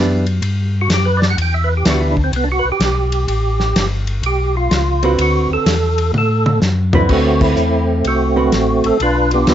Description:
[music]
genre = soul jazz organ trio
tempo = 126 BPM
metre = 4/4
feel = swing 66% on 8ths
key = D mixolydian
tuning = A4 = 440 Hz
[part]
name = archtop guitar, miked and amplified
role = accompaniment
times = 0.0-2.1, 5.0-9.5 s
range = D3 to B4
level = -18 LUFS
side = right 3 dB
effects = none
[part]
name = mellow tonewheel organ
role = bass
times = 0.0-9.5 s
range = G1 to A2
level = -17 LUFS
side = left 1 dB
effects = slow rotary speaker
[part]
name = warm soul drum kit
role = drums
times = 0.3-9.5 s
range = crash cymbal, hi-hat, kick drum, ride cymbal, snare drum, toms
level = -21 LUFS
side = left 1 dB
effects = none
[part]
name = percussive tonewheel organ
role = melody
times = 0.8-9.5 s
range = A3 to G5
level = -17 LUFS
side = right 2 dB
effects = overdrive, chorus vibrato, slow rotary speaker
[sound]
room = light reverb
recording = nothing above 7.7 kHz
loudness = -13 LUFS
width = side -10 dB against mid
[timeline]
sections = 0.0-7.1 A section; 7.1-9.5 B section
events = tonewheel organ solo 0.0-7.1; drum fill 6.1-7.1; band accent 7.3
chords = 0.0 Em7; 3.3 A9; 5.2 D13; 6.1 Asus2; 7.1 D13; 9.0 G

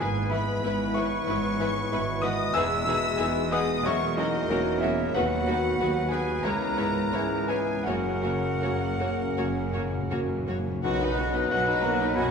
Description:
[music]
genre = classical, romantic movement for piano and orchestra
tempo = 78-95 BPM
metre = 4/4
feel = rubato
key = B major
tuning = A4 = 437 Hz
[part]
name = clear concert grand piano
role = melody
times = 0.0-12.3 s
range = B1 to E6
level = -29 LUFS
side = equal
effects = none
[part]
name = rich symphonic violin section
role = melody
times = 0.0-12.3 s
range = D#5 to E6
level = -38 LUFS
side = left 2 dB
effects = none
[part]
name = clear clarinet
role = second line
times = 0.0-12.3 s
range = D#4 to G#5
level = -34 LUFS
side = left 3 dB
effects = none
[part]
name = mellow cor anglais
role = second line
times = 0.0-12.3 s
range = A#4 to B4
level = -35 LUFS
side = right 4 dB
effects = none
[part]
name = silver concert flute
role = second line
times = 0.0-12.3 s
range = D#5 to E6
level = -35 LUFS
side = equal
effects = none
[part]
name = warm symphonic violin section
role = second line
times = 0.0-12.3 s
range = E4 to C#5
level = -35 LUFS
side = left 4 dB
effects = none
[part]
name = dark bassoon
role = accompaniment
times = 0.0-12.3 s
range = C#3 to G#3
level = -35 LUFS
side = left 1 dB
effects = none
[part]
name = rich studio viola section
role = accompaniment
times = 0.0-12.3 s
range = E3 to E4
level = -37 LUFS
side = right 2 dB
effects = none
[part]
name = mellow French horn section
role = sustained chords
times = 0.0-12.3 s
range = F#3 to G#4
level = -35 LUFS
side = left 4 dB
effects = none
[part]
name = rich symphonic cello section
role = bass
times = 0.0-12.3 s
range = C#2 to B3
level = -35 LUFS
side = right 3 dB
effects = none
[part]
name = rich symphonic double bass section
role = bass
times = 0.0-12.3 s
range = E1 to D#2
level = -36 LUFS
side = right 3 dB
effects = none
[part]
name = timpani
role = percussion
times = 7.9-10.8 s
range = F#2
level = -37 LUFS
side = left 1 dB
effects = none
[part]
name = tam-tam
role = percussion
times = 10.8-12.3 s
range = none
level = -37 LUFS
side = left 3 dB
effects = none
[sound]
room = wet concert hall reverb, RT60 2.2 s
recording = minimal, uncompressed stereo recording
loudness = -24 LUFS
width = side -6 dB against mid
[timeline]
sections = 0.0-10.8 A section; 10.8-12.3 B section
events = timpani fill 7.9-10.8; band accent 10.8-11.5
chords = 0.0 E/G#; 2.6 Emaj7; 3.8 F#7/E; 5.1 B/D#; 6.4 C#m7; 7.9 F#; 10.8 B

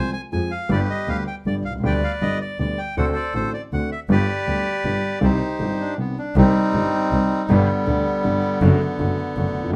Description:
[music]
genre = tango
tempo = 159 BPM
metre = 3/4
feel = rubato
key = C harmonic minor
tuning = A4 = 440 Hz
[part]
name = bandoneon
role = melody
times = 0.0-9.7 s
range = D3 to Ab5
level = -26 LUFS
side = equal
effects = none
[part]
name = warm grand piano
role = accompaniment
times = 0.0-9.8 s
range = G1 to Ab4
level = -25 LUFS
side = equal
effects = none
[part]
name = rich double bass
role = bass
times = 0.0-9.7 s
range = F1 to F2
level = -25 LUFS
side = equal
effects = none
[sound]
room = wet studio reverb, RT60 0.8 s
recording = none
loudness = -21 LUFS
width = mono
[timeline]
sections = 0.0-6.4 A section; 6.4-9.8 B section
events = break 6.0-6.4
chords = 0.0 Fm; 0.7 G; 3.0 D7; 4.1 G; 5.2 Cm; 7.5 G; 8.6 D/F#

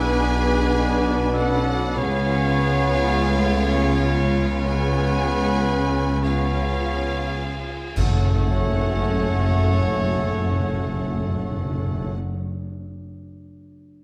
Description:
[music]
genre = classical, slow romantic movement for symphony orchestra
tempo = 33-53 BPM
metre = 4/4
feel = rubato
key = F# minor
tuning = A4 = 436 Hz
[part]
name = rich symphonic violin section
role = melody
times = 0.0-12.1 s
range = E#5 to G#5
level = -35 LUFS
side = equal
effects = none
[part]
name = concert flute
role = second line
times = 0.0-12.1 s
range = C#6 to D6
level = -38 LUFS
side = equal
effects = none
[part]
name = dark clarinet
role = second line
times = 0.0-12.1 s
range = B4 to C#5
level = -37 LUFS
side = equal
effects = none
[part]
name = rich symphonic violin section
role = second line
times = 0.0-12.1 s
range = E#4 to G#4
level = -36 LUFS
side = equal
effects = none
[part]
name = warm oboe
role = second line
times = 0.0-12.1 s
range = G#4 to B4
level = -33 LUFS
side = equal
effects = none
[part]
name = clear symphonic viola section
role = accompaniment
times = 0.0-12.1 s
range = G#3 to E#4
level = -33 LUFS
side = equal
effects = none
[part]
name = dark bassoon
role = accompaniment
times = 0.0-12.1 s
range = A3 to B3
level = -33 LUFS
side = equal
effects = none
[part]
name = warm French horn section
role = sustained chords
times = 0.0-12.1 s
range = A3 to D4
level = -33 LUFS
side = equal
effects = none
[part]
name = bright trumpet section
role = stabs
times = 0.0-12.1 s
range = B4 to C#5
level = -34 LUFS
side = equal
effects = none
[part]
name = mellow tuba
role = bass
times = 0.0-12.1 s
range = F#1 to C#2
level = -32 LUFS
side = equal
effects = none
[part]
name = rich symphonic cello section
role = bass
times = 0.0-12.1 s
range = F#2 to C#3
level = -30 LUFS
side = equal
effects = none
[part]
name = rich symphonic double bass section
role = bass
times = 0.0-12.1 s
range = F#1 to C#2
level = -28 LUFS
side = equal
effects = none
[part]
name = cymbal swell, clash cymbals and concert bass drum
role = percussion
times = 2.0-11.3 s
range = none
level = -32 LUFS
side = equal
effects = none
[part]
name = timpani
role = percussion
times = 2.0-12.1 s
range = F#2 to C#3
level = -29 LUFS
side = equal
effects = none
[sound]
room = moderate scoring stage reverb, RT60 1.9 s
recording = none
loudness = -22 LUFS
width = mono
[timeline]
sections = 0.0-8.0 A section; 8.0-14.0 B section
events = slowing down 0.0-8.0; band accent 8.0-9.7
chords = 0.0 G#dim/B; 2.0 C#7; 8.0 F#m

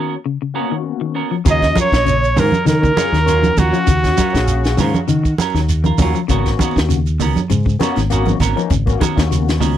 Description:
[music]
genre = afrobeat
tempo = 99 BPM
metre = 4/4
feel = swing 54% on 16ths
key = Eb minor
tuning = A4 = 440 Hz
[part]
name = overdriven tine electric piano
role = accompaniment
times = 0.0-9.8 s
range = Gb3 to F5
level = -23 LUFS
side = left 12 dB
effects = phaser
[part]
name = clean electric guitar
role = arpeggios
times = 0.0-9.8 s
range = Db3 to Gb3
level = -22 LUFS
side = left 8 dB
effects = none
[part]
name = semi-hollow electric guitar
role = stabs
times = 0.0-9.8 s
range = Gb3 to Bb4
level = -23 LUFS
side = right 8 dB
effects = none
[part]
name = clear trumpet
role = melody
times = 1.5-4.8 s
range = Gb4 to Eb5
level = -19 LUFS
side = equal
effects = tape echo
[part]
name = mellow hollow bansuri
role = second line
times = 1.5-4.8 s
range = Gb4 to Eb5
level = -22 LUFS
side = right 10 dB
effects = none
[part]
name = fingered electric bass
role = bass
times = 1.5-9.7 s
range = Ab1 to Eb3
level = -17 LUFS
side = equal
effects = none
[part]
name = compact cocktail drum kit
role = drums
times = 1.5-9.8 s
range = hi-hat, kick drum, snare drum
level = -20 LUFS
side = equal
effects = none
[part]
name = shekere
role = percussion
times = 1.5-9.8 s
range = none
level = -25 LUFS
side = right 4 dB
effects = none
[part]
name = congas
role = percussion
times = 1.8-9.8 s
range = none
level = -20 LUFS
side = right 4 dB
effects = none
[sound]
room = little or no reverb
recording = dry, close 1970s-style studio recording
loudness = -13 LUFS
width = side -11 dB against mid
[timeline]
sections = 0.0-1.5 A section; 1.5-9.8 B section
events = break 0.0-1.5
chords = 0.0 Abm11 (rootless); 1.5 Ebm9; 6.3 Abm11

